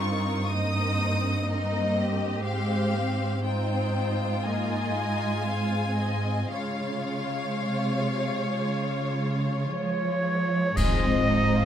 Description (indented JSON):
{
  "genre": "cinematic, emotional film score for orchestra",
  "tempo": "55-62 BPM",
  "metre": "4/4",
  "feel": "rubato",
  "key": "Ab major",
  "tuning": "A4 = 440 Hz",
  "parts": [
    { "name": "warm symphonic violin section", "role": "melody", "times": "0.0-11.7 s", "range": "C5 to Eb6", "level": "-33 LUFS", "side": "left 4 dB", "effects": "none" },
    { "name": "warm symphonic violin section", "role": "second line", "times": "0.0-11.7 s", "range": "Ab3 to F5", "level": "-33 LUFS", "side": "left 2 dB", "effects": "none" },
    { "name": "warm symphonic viola section", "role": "accompaniment", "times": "0.0-11.7 s", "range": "Ab3 to Db5", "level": "-31 LUFS", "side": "equal", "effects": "none" },
    { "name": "dark symphonic cello section", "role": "bass", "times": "0.0-11.6 s", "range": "G2 to F3", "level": "-28 LUFS", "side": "right 2 dB", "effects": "none" },
    { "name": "cymbal swell, clash cymbals and concert bass drum", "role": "percussion", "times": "6.5-11.7 s", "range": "none", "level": "-30 LUFS", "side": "equal", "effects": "none" },
    { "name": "bright oboe", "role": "second line", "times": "9.7-11.7 s", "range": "Db5 to Eb5", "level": "-29 LUFS", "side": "equal", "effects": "none" },
    { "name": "flute section", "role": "second line", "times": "9.7-11.7 s", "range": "Db5 to Eb5", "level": "-31 LUFS", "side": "right 1 dB", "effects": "none" },
    { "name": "mellow French horn section", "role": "sustained chords", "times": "10.8-11.7 s", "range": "F3 to C4", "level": "-29 LUFS", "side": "left 3 dB", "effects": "none" },
    { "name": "rich symphonic double bass section", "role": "bass", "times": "10.8-11.6 s", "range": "Ab1", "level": "-31 LUFS", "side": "right 2 dB", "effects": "none" }
  ],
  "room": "light reverb",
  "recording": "close, detailed microphones",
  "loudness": "-24 LUFS",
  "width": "side -9 dB against mid",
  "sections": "0.0-10.8 A section",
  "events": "band accent 10.8-11.7",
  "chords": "0.0 Eb6/G; 2.5 Ab6; 6.5 Db; 10.8 Ab6",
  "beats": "0.49 1.46 | 2.45 3.45 4.45 5.46 | 6.51 7.60 8.65 9.70 | 10.76"
}